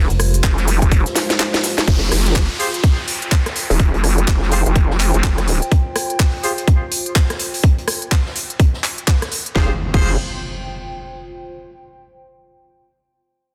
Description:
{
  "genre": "bass house",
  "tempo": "125 BPM",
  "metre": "4/4",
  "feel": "swing 60% on 16ths",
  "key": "F minor",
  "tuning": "A4 = 441 Hz",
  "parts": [
    { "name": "dark analog pad", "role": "sustained chords", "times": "0.0-1.8 s", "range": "Ab3 to Bb4", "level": "-33 LUFS", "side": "equal", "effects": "chorus, sidechain pumping" },
    { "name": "vowel-sweep wobble bass", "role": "bass", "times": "0.0-5.6, 9.6-10.2 s", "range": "Eb1 to F1", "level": "-19 LUFS", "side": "equal", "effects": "chorus, overdrive, sidechain pumping" },
    { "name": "warbly tape-like pad", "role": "texture", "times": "0.2-11.4 s", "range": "F4 to G5", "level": "-33 LUFS", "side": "equal", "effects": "chorus, built-in reverb, sidechain pumping" },
    { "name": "garage drum kit", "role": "drums", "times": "0.1-10.0 s", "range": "cabasa, crash cymbal, handclaps, hi-hat, rim click, snare drum", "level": "-24 LUFS", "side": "equal", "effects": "none" },
    { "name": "electronic kick drum", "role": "drums", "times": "0.4-10.0 s", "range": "none", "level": "-18 LUFS", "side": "equal", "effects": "none" },
    { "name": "open jazz drum kit", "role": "drums", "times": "0.4-9.5 s", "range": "hi-hat, snare drum", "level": "-35 LUFS", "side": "equal", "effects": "none" },
    { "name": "downlifter and impact", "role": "sound effects", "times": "1.9-5.7, 9.7-11.5 s", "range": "none", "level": "-30 LUFS", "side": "equal", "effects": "none" },
    { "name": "bright horn section", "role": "stabs", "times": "2.6-6.5, 9.6-10.1 s", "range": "F4 to C5", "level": "-28 LUFS", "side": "equal", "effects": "sidechain pumping, low-pass filter, tape echo" }
  ],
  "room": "digital ambience",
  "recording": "dense, heavily limited modern master",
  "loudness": "-17 LUFS",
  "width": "mono",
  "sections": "0.0-1.9 A section; 1.9-9.6 B section; 9.6-11.5 C section",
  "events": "drop 0.0-1.9; drum fill 1.2-1.9; fade-out on ambient pad 1.9-9.6",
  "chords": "0.0 Fmadd9; 1.9 Fsus2; 9.6 Fmadd9"
}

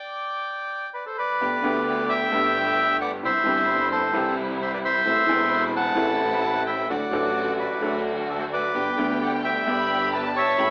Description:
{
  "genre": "tango",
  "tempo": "131 BPM",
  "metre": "4/4",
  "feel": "rubato",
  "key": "G major",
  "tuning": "A4 = 440 Hz",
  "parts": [
    { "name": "bandoneon", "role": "melody", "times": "0.0-10.7 s", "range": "A4 to B5", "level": "-26 LUFS", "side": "equal", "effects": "none" },
    { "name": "clear upright piano", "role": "accompaniment", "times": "1.4-10.7 s", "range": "E1 to A4", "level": "-30 LUFS", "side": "equal", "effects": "none" },
    { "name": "warm symphonic string section", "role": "stabs", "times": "1.4-10.7 s", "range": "G3 to G4", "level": "-34 LUFS", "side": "equal", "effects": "none" },
    { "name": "clear double bass", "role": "bass", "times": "1.4-10.7 s", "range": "E1 to D2", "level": "-36 LUFS", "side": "equal", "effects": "none" },
    { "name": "warm studio violin section", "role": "second line", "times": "8.7-10.7 s", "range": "G5 to B5", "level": "-32 LUFS", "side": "equal", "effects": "none" }
  ],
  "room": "wet large studio reverb, RT60 1.3 s",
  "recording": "AM radio sound",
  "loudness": "-24 LUFS",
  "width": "mono",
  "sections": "0.0-1.4 A section; 1.4-10.7 A section",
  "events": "stop 0.0-1.4",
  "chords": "0.0 G; 1.4 Gadd9; 3.2 C; 5.1 Am; 6.9 D; 8.7 G"
}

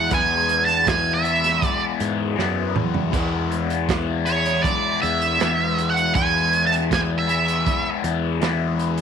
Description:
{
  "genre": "psychedelic rock",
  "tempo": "80 BPM",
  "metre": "4/4",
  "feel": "straight",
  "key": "E major",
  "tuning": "A4 = 440 Hz",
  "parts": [
    { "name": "octave-fuzz lead guitar", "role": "melody", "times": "0.0-7.9 s", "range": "C#5 to A5", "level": "-20 LUFS", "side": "right 4 dB", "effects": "wah, distortion, slapback echo" },
    { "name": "raw garage guitar", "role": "riff", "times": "0.0-9.0 s", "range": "E3 to E4", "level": "-25 LUFS", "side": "left 14 dB", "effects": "overdrive, phaser" },
    { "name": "fuzz picked electric bass", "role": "bass", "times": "0.0-9.0 s", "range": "E2 to G#2", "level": "-25 LUFS", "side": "equal", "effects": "overdrive, transformer saturation" },
    { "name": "hand-pumped harmonium", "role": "drone", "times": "0.0-9.0 s", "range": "E2", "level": "-33 LUFS", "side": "left 3 dB", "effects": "none" },
    { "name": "crunchy breakbeat drum kit", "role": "drums", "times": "0.1-9.0 s", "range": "hi-hat, kick drum, snare drum, splash cymbal, toms", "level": "-26 LUFS", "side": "right 4 dB", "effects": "none" }
  ],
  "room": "small room reverb",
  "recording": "1960s-style stereo",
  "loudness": "-18 LUFS",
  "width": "side -7 dB against mid",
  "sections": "0.0-9.0 A section",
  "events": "lead electric guitar solo 0.0-9.0; drum fill 2.4-3.1",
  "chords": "0.0 E"
}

